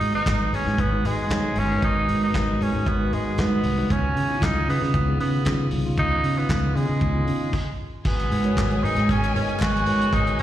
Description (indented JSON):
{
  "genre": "disco",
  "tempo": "116 BPM",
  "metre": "4/4",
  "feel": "straight",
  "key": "G# dorian",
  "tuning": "A4 = 440 Hz",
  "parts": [
    { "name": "raspy tenor saxophone", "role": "melody", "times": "0.0-10.4 s", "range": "G#3 to F#4", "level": "-26 LUFS", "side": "right 1 dB", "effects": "slapback echo" },
    { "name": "tonewheel organ", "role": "sustained chords", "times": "0.0-10.4 s", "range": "C#3 to G#4", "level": "-33 LUFS", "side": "right 4 dB", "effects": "stopped rotary speaker" },
    { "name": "fingered electric bass", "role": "bass", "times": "0.0-10.4 s", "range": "G1 to C#3", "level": "-24 LUFS", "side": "right 1 dB", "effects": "none" },
    { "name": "warm soul drum kit", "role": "drums", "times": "0.0-10.4 s", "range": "crash cymbal, handclaps, hi-hat, kick drum, snare drum", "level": "-28 LUFS", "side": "equal", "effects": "none" },
    { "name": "mellow tine electric piano", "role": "accompaniment", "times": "0.1-10.4 s", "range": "C#3 to D#5", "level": "-27 LUFS", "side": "left 2 dB", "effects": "medium stereo tremolo, slapback echo" },
    { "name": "warm studio string section", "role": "second line", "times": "8.1-10.4 s", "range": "G#4 to G#5", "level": "-32 LUFS", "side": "left 1 dB", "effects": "slapback echo" },
    { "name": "group handclap", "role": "percussion", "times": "8.6-9.7 s", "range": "none", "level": "-41 LUFS", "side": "right 4 dB", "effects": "none" }
  ],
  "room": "light reverb",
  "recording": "live gig heard through the venue's PA, recital hall reverb",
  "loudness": "-20 LUFS",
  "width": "side -12 dB against mid",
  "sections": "0.0-8.1 A section; 8.1-10.4 B section",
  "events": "stop 7.5-8.1",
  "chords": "0.0 G#m7; 3.9 C#9; 8.1 G#m11"
}